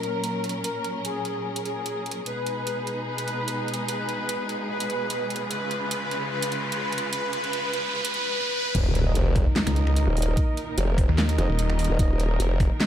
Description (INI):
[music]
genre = heavy wobble dubstep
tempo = 148 BPM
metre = 4/4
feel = swing 54% on 16ths, half-time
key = Eb minor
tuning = A4 = 439 Hz
[part]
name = soft supersaw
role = melody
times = 0.0-8.7 s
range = Ab4 to Cb5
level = -29 LUFS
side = equal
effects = phaser, low-pass filter, ping-pong delay
[part]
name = clear symphonic string section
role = sustained chords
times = 0.0-12.9 s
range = Bb2 to Bb4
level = -32 LUFS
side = equal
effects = sidechain pumping, low-pass filter
[part]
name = dubstep drum kit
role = drums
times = 0.0-12.9 s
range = crash cymbal, finger snaps, handclaps, hi-hat, snare drum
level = -30 LUFS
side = right 1 dB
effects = studio reverb
[part]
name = riser and impact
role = sound effects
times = 3.4-10.4 s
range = none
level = -31 LUFS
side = equal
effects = none
[part]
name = formant-sweep wobble bass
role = bass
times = 8.7-12.7 s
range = Eb1 to F1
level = -23 LUFS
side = equal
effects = chorus, overdrive
[part]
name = electronic kick drum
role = drums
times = 8.7-12.7 s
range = none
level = -23 LUFS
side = equal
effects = studio reverb
[part]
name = warm brass ensemble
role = stabs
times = 9.1-12.9 s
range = Eb4 to Eb5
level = -33 LUFS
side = right 4 dB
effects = ping-pong delay
[part]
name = snarling distorted saw bass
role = bass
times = 9.7-11.9 s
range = Eb1 to Eb2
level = -22 LUFS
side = equal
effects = distortion, overdrive
[sound]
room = light reverb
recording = none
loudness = -23 LUFS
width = side -10 dB against mid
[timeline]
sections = 0.0-8.7 A section; 8.7-12.9 B section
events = build-up 0.0-8.7; filter sweep on supersaw synth 0.0-8.7; riser 3.4-8.7; drop 8.7-12.9; impact 8.7-10.4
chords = 0.0 Ebm (rootless); 2.3 Abm; 5.5 Db; 8.7 Eb5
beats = 0.24 | 0.64 1.05 1.45 1.86 | 2.26 2.67 3.07 3.48 | 3.88 4.29 4.70 5.10 | 5.51 5.91 6.32 6.72 | 7.13 7.53 7.94 8.34 | 8.75 9.15 9.56 9.96 | 10.37 10.78 11.18 11.59 | 11.99 12.40 12.80